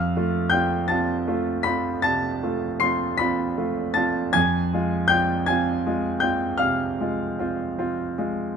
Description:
classical, romantic nocturne for solo piano; 52 BPM (dotted quarters); 12/8; rubato; A4 = 440 Hz
clear concert grand piano; solo; 0.0-8.6 s; F2 to C7; -21 LUFS; equal
light reverb; close, detailed microphones; -21 LUFS; side -6 dB against mid
0.0-8.6 A section
0.0 F; 4.4 Fm

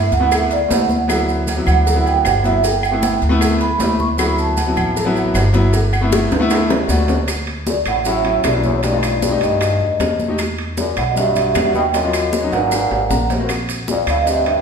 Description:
Afro-Cuban jazz; 155 BPM; 4/4; straight; A4 = 439 Hz
vibraphone with soft mallets; melody; 0.0-5.1, 7.7-14.6 s; C#5 to C#6; -19 LUFS; right 3 dB
clear concert grand piano; accompaniment; 0.0-14.6 s; F#3 to A#5; -20 LUFS; left 1 dB
upright bass; bass; 0.0-14.6 s; G1 to G2; -20 LUFS; equal
congas; percussion; 0.1-14.6 s; -26 LUFS; left 2 dB
cowbell and bongos; percussion; 0.1-14.5 s; -26 LUFS; left 3 dB
maracas; percussion; 0.1-14.5 s; -30 LUFS; right 4 dB
agogo bells and timbales; percussion; 0.3-14.6 s; -25 LUFS; right 5 dB
claves; percussion; 0.3-14.3 s; -30 LUFS; left 4 dB
bright trombone; second line; 7.7-14.6 s; E2 to B2; -25 LUFS; left 3 dB
wet recital hall reverb, RT60 1.4 s; recorded in a church or concert hall; -14 LUFS; side -6 dB against mid
0.0-7.3 A section; 7.3-14.6 B section
vibraphone solo 0.0-7.3; drum fill 6.1-7.3, 12.5-13.5; grand piano fill 6.7-7.3, 12.9-13.5
0.0 G6 (rootless); 1.1 D6; 2.6 G6; 7.3 Dmaj9; 8.8 B7alt; 10.4 Em9; 11.9 Ebm7; 12.7 G#9; 13.5 Bb69

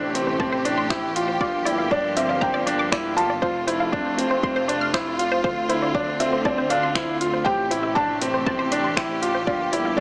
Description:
piano and strings electronica; 119 BPM; 4/4; straight; A4 = 441 Hz
felt-muted upright piano; melody; 0.0-10.0 s; C5 to A5; -29 LUFS; equal
clear studio string section; sustained chords; 0.0-10.0 s; C3 to G4; -31 LUFS; equal; sidechain pumping
clear baby grand piano; riff; 0.0-10.0 s; C4 to G4; -27 LUFS; equal; digital delay
dark detuned saw bass; bass; 0.0-10.0 s; F1 to D2; -35 LUFS; equal; sidechain pumping
deep house drum kit; drums; 0.2-9.8 s; finger snaps, hi-hat; -31 LUFS; equal
unison pluck; arpeggios; 0.3-9.9 s; C5 to F6; -32 LUFS; equal; sidechain pumping, digital delay
electronic kick drum; drums; 0.4-10.0 s; -31 LUFS; equal
moderate huge ambient reverb, RT60 4.9 s; small speaker sound; -23 LUFS; mono
0.0-10.0 A section
0.0 Am7; 1.4 Gm7; 3.4 F; 5.4 Dm7; 7.5 Am7; 9.5 Gm7

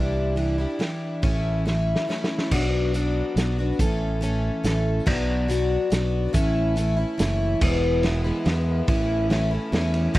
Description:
folk rock and heartland rock; 141 BPM; 3/4; straight; A4 = 440 Hz
picked plugged-in twelve-string acoustic guitar; accompaniment; 0.0-10.2 s; E2 to A4; -25 LUFS; left 1 dB
fingered electric bass; bass; 0.0-10.2 s; E1 to E2; -24 LUFS; right 1 dB
loose indie drum kit; drums; 0.4-10.2 s; crash cymbal, hi-hat, kick drum, ride cymbal, snare drum; -26 LUFS; right 1 dB
little or no reverb; dry, close 1970s-style studio recording; -21 LUFS; side -17 dB against mid
0.0-2.5 A section; 2.5-7.6 B section; 7.6-10.2 C section
drum fill 1.7-2.5
0.0 Cadd9; 1.2 A; 2.5 Bm; 3.8 A; 5.1 Bm; 6.3 A; 7.6 E; 8.9 A

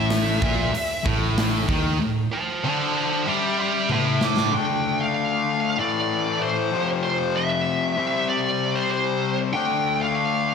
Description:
hard rock; 95 BPM; 4/4; straight; A minor; A4 = 439 Hz
high-gain lead guitar; melody; 0.0-10.5 s; C5 to D6; -24 LUFS; right 2 dB; distortion, slapback echo
distorted electric guitar; riff; 0.0-10.5 s; F2 to D4; -25 LUFS; left 8 dB; overdrive, slapback echo
distorted electric guitar; riff; 0.0-4.5 s; A2 to G3; -31 LUFS; right 1 dB; overdrive, slapback echo
scooped high-gain guitar; riff; 0.0-4.5 s; A2 to G3; -28 LUFS; right 9 dB; distortion
picked electric bass; bass; 0.0-2.0 s; A1 to D#2; -26 LUFS; right 1 dB
big rock drum kit; drums; 0.1-4.5 s; hi-hat, kick drum, snare drum, toms; -26 LUFS; equal
wet lush hall reverb, RT60 1.9 s, studio ambience; big arena sound; -20 LUFS; side -6 dB against mid
0.0-4.5 A section; 4.5-10.5 B section
lead electric guitar solo 0.0-4.5; drum fill 3.9-4.5
0.0 Am; 4.5 Dm; 5.8 A5; 6.7 F5; 8.0 C5; 9.6 Dm

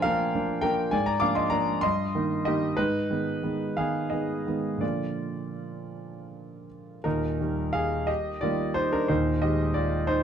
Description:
classical, romantic character piece for solo piano; 53-70 BPM (dotted quarters); 6/8; rubato; Eb major; A4 = 437 Hz
warm concert grand piano; solo; 0.0-10.2 s; Eb1 to D6; -25 LUFS; equal
light reverb; dark, warm production; -24 LUFS; side -8 dB against mid
0.0-7.0 A section; 7.0-10.2 B section
0.0 Bb; 0.9 Bb7/Ab; 1.8 Eb/G; 2.8 Abm; 4.8 Bb; 7.0 Eb; 9.1 Ab/Eb

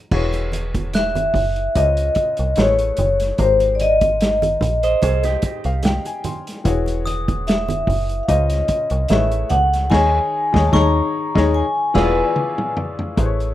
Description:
lush 1970s-style soul; 74 BPM; 4/4; swing 54% on 16ths; A4 = 440 Hz
clear grand piano; accompaniment; 0.0-13.5 s; Db3 to C6; -24 LUFS; left 6 dB
metallic FM bass; bass; 0.1-13.5 s; E1 to Eb2; -21 LUFS; right 1 dB
vintage drum kit; drums; 0.1-13.5 s; crash cymbal, hi-hat, kick drum, snare drum, toms; -22 LUFS; right 1 dB
congas; percussion; 0.1-9.7 s; -29 LUFS; right 6 dB
glockenspiel with brass mallets; texture; 0.9-2.1, 7.1-13.5 s; Db6 to F#6; -30 LUFS; left 2 dB
vibraphone with medium hard mallets; melody; 1.0-12.7 s; C5 to Bb5; -19 LUFS; left 1 dB
electric guitar through a small old amp; riff; 4.8-6.4, 12.0-12.2 s; Eb4 to Eb5; -25 LUFS; right 8 dB; spring reverb
little or no reverb; rough home demo mix; -16 LUFS; side -13 dB against mid
0.1-13.2 A section
grand piano fill 5.0-6.7; band accent 9.9-13.2; drum fill 11.5-13.2
0.1 E69; 1.8 Dbmaj7; 2.6 Amaj7; 3.4 Abmaj7; 6.7 E69; 8.3 Dbmaj7; 9.1 Amaj7; 9.9 Eb7sus4; 11.5 E7b9

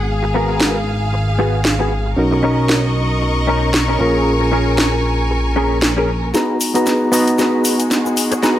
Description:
nu-disco, nu disco; 115 BPM; 4/4; swing 56% on 16ths; G# dorian; A4 = 440 Hz
barky reed electric piano; accompaniment; 0.0-8.6 s; B3 to A#5; -19 LUFS; right 1 dB; overdrive, fast tremolo, analog delay
clear studio string section; sustained chords; 0.0-8.6 s; G#3 to C#6; -23 LUFS; left 1 dB; low-pass filter
fat analog bass; bass; 0.0-6.3 s; G#1 to B1; -19 LUFS; equal
direct-recorded clean electric guitar; riff; 0.2-8.6 s; B3 to B4; -21 LUFS; left 1 dB; ensemble chorus, vintage 12-bit sampler grit, low-pass filter, analog delay
house drum kit; drums; 0.6-8.6 s; hi-hat, snare drum; -19 LUFS; equal; overdrive, studio reverb
egg shaker; percussion; 6.3-8.6 s; -26 LUFS; left 2 dB
light reverb, digital ambience; -14 LUFS; side -12 dB against mid
0.0-6.3 A section; 6.3-8.6 B section
filter sweep on reed electric piano 0.0-6.3; build-up 6.3-8.6; drum fill 6.3-8.6; filter sweep on clean electric guitar 6.3-8.6; filter sweep on string section 6.3-8.6
0.0 G#m7; 2.2 Bmaj9; 4.0 A#m7; 6.3 G#m7

